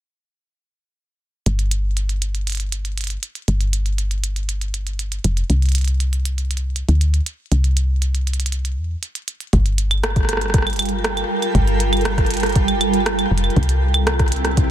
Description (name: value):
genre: IDM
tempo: 119 BPM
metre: 4/4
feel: straight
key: G dorian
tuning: A4 = 441 Hz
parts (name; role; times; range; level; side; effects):
- woody FM bass; bass; 1.5-14.7 s; F1 to E2; -19 LUFS; equal; none
- glitchy drum kit; drums; 1.5-14.7 s; claves, hi-hat, rim click; -24 LUFS; right 2 dB; overdrive, ping-pong delay
- granular cloud pad; sustained chords; 10.4-14.7 s; C3 to G5; -21 LUFS; right 2 dB; built-in reverb
- electronic kick drum; drums; 9.5-14.7 s; none; -18 LUFS; equal; overdrive
room: digital ambience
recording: dense, heavily limited modern master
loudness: -17 LUFS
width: side -11 dB against mid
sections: 1.5-14.7 A section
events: filter sweep on FM bass 1.5-14.7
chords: 1.5 N.C.; 9.5 Gm7; 13.6 C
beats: | 1.46 1.97 2.47 2.98 | 3.48 3.98 4.49 4.99 | 5.50 6.00 6.51 7.01 | 7.51 8.02 8.52 9.03 | 9.53 10.04 10.54 11.04 | 11.55 12.05 12.56 13.06 | 13.56 14.07 14.57